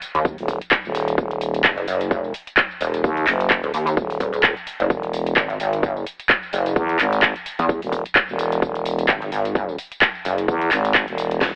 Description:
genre	bass house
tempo	129 BPM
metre	4/4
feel	swing 56% on 16ths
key	unclear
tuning	A4 = 440 Hz
part	house drum kit	drums	0.0-11.5 s	handclaps, hi-hat, snare drum, tambourine	-20 LUFS	equal	none
part	pulsing pluck wobble bass	bass	0.1-10.5 s	Eb1 to E2	-21 LUFS	equal	chorus, overdrive, sidechain pumping
part	electronic kick drum	drums	0.2-11.5 s	none	-22 LUFS	equal	none
part	growling FM bass	bass	0.4-11.5 s	Eb1 to E2	-21 LUFS	equal	overdrive, sidechain pumping
room	light reverb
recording	telephone sound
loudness	-18 LUFS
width	side -40 dB against mid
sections	0.0-11.6 A section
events	none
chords	0.0 Ebm; 4.9 E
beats	0.25 0.71 | 1.18 1.65 2.11 2.58 | 3.04 3.51 3.97 4.44 | 4.90 5.37 5.83 6.30 | 6.76 7.23 7.69 8.16 | 8.62 9.09 9.55 10.02 | 10.48 10.95 11.41

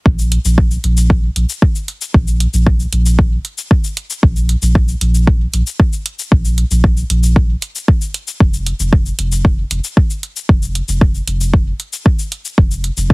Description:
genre	dub techno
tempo	115 BPM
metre	4/4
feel	straight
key	unclear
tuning	A4 = 440 Hz
part	warm sub bass	bass	0.1-13.1 s	F1 to Bb1	-15 LUFS	equal	sidechain pumping
part	electronic kick drum	drums	0.1-13.1 s	none	-12 LUFS	equal	none
part	electronic cabasa and hi-hat	drums	0.2-13.1 s	none	-23 LUFS	left 2 dB	none
room	little or no reverb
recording	heavily compressed radio sound, multiband compression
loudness	-12 LUFS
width	side -28 dB against mid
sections	0.1-13.1 A section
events	none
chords	none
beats	| 0.06 0.58 1.10 1.62 | 2.14 2.67 3.19 3.71 | 4.23 4.75 5.27 5.80 | 6.32 6.84 7.36 7.88 | 8.40 8.93 9.45 9.97 | 10.49 11.01 11.54 12.06 | 12.58 13.10

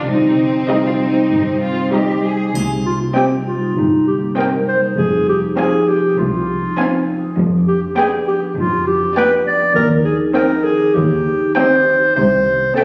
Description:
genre	cinematic, playful, whimsical film cue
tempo	100 BPM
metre	4/4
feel	straight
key	C minor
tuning	A4 = 441 Hz
part	concert harp	arpeggios	0.0-12.8 s	C3 to Ab4	-24 LUFS	equal	none
part	muted chamber cello section	bass	0.0-12.6 s	C2 to Ab4	-23 LUFS	equal	none
part	muted chamber violin section	second line	0.1-12.8 s	C4 to F5	-26 LUFS	equal	none
part	muted chamber double bass section	bass	0.1-12.6 s	F1 to Eb2	-24 LUFS	equal	none
part	muted chamber violin section	melody	0.7-12.8 s	Eb5 to Ab5	-26 LUFS	equal	none
part	muted chamber viola section	accompaniment	0.7-12.8 s	G3 to Eb4	-24 LUFS	equal	none
part	triangle	percussion	2.6-3.7 s	none	-39 LUFS	equal	none
part	warm clarinet	second line	2.9-12.8 s	Eb4 to D5	-18 LUFS	equal	none
room	wet scoring stage reverb, RT60 1.8 s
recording	recorded on a phone in the room, club reverb, compression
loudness	-16 LUFS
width	mono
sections	0.0-2.5 A section; 2.5-12.8 B section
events	none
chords	0.1 Cm; 5.0 Fm; 7.4 G7/F; 9.8 Cm/Eb; 12.2 C5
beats	| 0.07 0.69 1.31 1.93 | 2.55 3.15 3.76 4.37 | 4.97 5.57 6.17 6.77 | 7.38 7.97 8.57 9.16 | 9.76 10.35 10.95 11.56 | 12.17 12.77

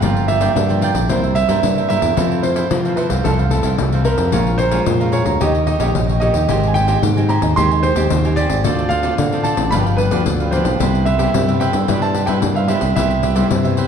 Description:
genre	samba and choro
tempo	111 BPM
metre	4/4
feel	straight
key	C major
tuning	A4 = 440 Hz
part	warm grand piano	melody	0.0-13.9 s	A4 to C6	-20 LUFS	right 4 dB	none
part	cavaquinho	accompaniment	0.0-13.9 s	D4 to Bb5	-24 LUFS	right 5 dB	none
part	nylon-string guitar	accompaniment	0.0-13.9 s	F2 to A4	-22 LUFS	left 3 dB	none
part	modern bright fingered electric bass	bass	0.0-13.9 s	G1 to F3	-18 LUFS	equal	none
part	pandeiro	percussion	0.0-13.9 s	none	-22 LUFS	left 5 dB	none
room	wet recital hall reverb, RT60 1.3 s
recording	recorded in a church or concert hall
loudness	-14 LUFS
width	side -7 dB against mid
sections	0.0-13.9 A section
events	none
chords	0.0 Gm7; 1.1 C7; 2.2 Fmaj7; 4.3 Bbm7; 5.4 Eb7; 6.5 Abmaj7; 8.6 Dm7; 9.7 G7; 10.8 Cmaj7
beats	| 0.02 0.56 1.09 1.63 | 2.17 2.71 3.25 3.79 | 4.33 4.87 5.41 5.95 | 6.49 7.03 7.57 8.11 | 8.65 9.19 9.73 10.27 | 10.81 11.35 11.89 12.43 | 12.97 13.51

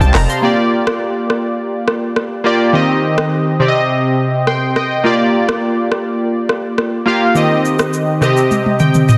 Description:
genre	afrobeats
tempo	104 BPM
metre	4/4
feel	straight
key	Bb major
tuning	A4 = 440 Hz
part	warm analog keys	accompaniment	0.0-9.2 s	C3 to C6	-16 LUFS	equal	chorus
part	afro-pop drum kit	drums	0.0-9.2 s	handclaps, hi-hat, rim click, shaker, toms	-20 LUFS	equal	vintage 12-bit sampler grit
room	light reverb, digital ambience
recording	dense, heavily limited modern master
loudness	-15 LUFS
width	mono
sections	0.4-9.2 A section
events	synth keys fill 0.0-0.4, 4.2-5.0, 8.5-9.2; drum fill 8.5-9.2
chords	0.4 Bb6; 2.7 Eb6; 3.6 Cm; 5.0 Bb6; 7.4 Eb6; 8.2 Cm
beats	| 0.43 1.01 1.59 2.16 | 2.74 3.32 3.90 4.47 | 5.05 5.63 6.20 6.78 | 7.36 7.93 8.51 9.09

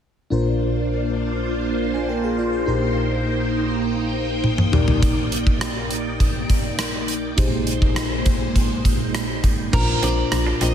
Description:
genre	1980s-style pop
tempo	102 BPM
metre	4/4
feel	straight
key	Bb mixolydian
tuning	A4 = 440 Hz
part	FM electric piano with soft pad layer	accompaniment	0.3-10.7 s	Bb1 to Ab5	-24 LUFS	left 1 dB	chorus, shimmer reverb
part	phased string machine	sustained chords	0.3-9.7 s	Bb2 to G5	-25 LUFS	right 1 dB	ensemble chorus, phaser, shimmer reverb
part	gated 80s drum kit	drums	4.4-10.7 s	crash cymbal, hi-hat, kick drum, rim click, toms	-20 LUFS	equal	none
part	bowl-back mandolin	melody	9.7-10.7 s	Bb4 to Eb5	-27 LUFS	right 1 dB	ping-pong delay, shimmer reverb
part	direct-recorded clean electric guitar	riff	9.7-10.7 s	Bb3 to D4	-32 LUFS	right 5 dB	lush chorus, ping-pong delay, shimmer reverb
part	slap-like FM bass	bass	9.7-10.7 s	Bb1	-22 LUFS	equal	none
room	moderate lush hall reverb, RT60 2.4 s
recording	dreamy mix soaked in reverb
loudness	-18 LUFS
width	side -9 dB against mid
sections	0.3-9.7 A section; 9.7-10.7 B section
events	drum fill 4.4-5.0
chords	0.3 Bbadd9; 2.7 Cm7/Bb; 4.7 Ebmaj7/Bb; 7.4 Abmaj7/Bb; 9.7 Bbadd9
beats	| 0.32 0.91 1.50 2.08 | 2.67 3.26 3.85 4.44 | 5.03 5.61 6.20 6.79 | 7.38 7.97 8.55 9.14 | 9.73 10.32

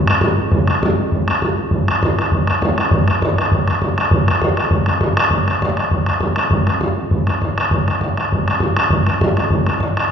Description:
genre	celtic folk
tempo	200 BPM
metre	4/4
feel	swing 53% on 8ths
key	none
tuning	none
part	bodhran	percussion	0.1-10.0 s	none	-14 LUFS	equal	none
room	wet recital hall reverb, RT60 1.6 s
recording	heard from further back in the room, nothing above 8.0 kHz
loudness	-14 LUFS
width	side -7 dB against mid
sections	0.0-2.9 A section; 2.9-10.1 B section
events	none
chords	none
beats	0.23 | 0.53 0.83 1.12 1.42 | 1.72 2.02 2.32 2.62 | 2.91 3.21 3.51 3.81 | 4.11 4.41 4.71 5.01 | 5.31 5.61 5.91 6.21 | 6.51 6.81 7.11 7.41 | 7.71 8.01 8.31 8.61 | 8.91 9.21 9.51 9.81

